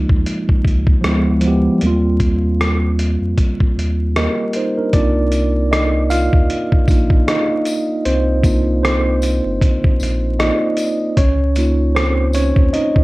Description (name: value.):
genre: lo-fi hip hop.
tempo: 77 BPM.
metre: 4/4.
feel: swing 57% on 16ths.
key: C minor.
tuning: A4 = 439 Hz.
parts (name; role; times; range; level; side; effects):
mellow tine electric piano; accompaniment; 0.0-13.0 s; F3 to F5; -17 LUFS; right 1 dB; medium stereo tremolo.
warm sub bass; bass; 0.0-12.7 s; G1 to F2; -18 LUFS; equal; none.
dusty soul sampler-style drum kit; drums; 0.1-13.0 s; hi-hat, kick drum, rim click; -16 LUFS; equal; vintage 12-bit sampler grit.
tambourine; percussion; 5.3-12.5 s; none; -35 LUFS; left 4 dB; none.
room: light reverb.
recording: vinyl crackle.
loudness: -14 LUFS.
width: side -20 dB against mid.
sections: 0.0-4.9 A section; 4.9-13.0 B section.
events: tine electric piano solo 4.9-13.0.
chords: 0.0 Db6; 1.0 Ddim7; 1.8 Eb6; 4.9 Cm11; 11.2 Db6.